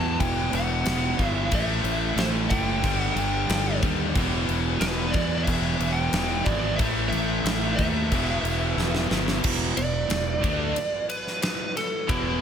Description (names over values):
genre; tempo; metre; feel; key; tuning
hard rock; 91 BPM; 4/4; straight; E minor; A4 = 445 Hz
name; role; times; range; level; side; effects
biting lead guitar; melody; 0.0-12.4 s; E4 to A5; -30 LUFS; right 2 dB; overdrive, digital delay
overdriven tonewheel organ; sustained chords; 0.0-12.4 s; E3 to C5; -40 LUFS; left 1 dB; none
biting overdriven guitar; riff; 0.0-12.4 s; E2 to D4; -30 LUFS; right 11 dB; none
distorted electric guitar; riff; 0.0-12.4 s; E2 to D4; -33 LUFS; left 13 dB; distortion
tight distorted guitar; riff; 0.0-12.4 s; E2 to D4; -31 LUFS; left 2 dB; distortion
fuzz fingered electric bass; bass; 0.0-12.4 s; E1 to E2; -28 LUFS; equal; overdrive
huge arena drum kit; drums; 0.2-12.2 s; crash cymbal, kick drum, ride cymbal, snare drum; -28 LUFS; left 1 dB; none
room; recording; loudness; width
little or no reverb; none; -22 LUFS; side -8 dB against mid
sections
0.0-9.4 A section; 9.4-12.4 B section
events
drum fill 8.8-9.4; lead electric guitar solo 9.4-12.4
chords
0.0 Em; 1.5 Am; 2.8 G5; 4.2 E5; 6.8 A5; 8.1 Em; 9.4 E5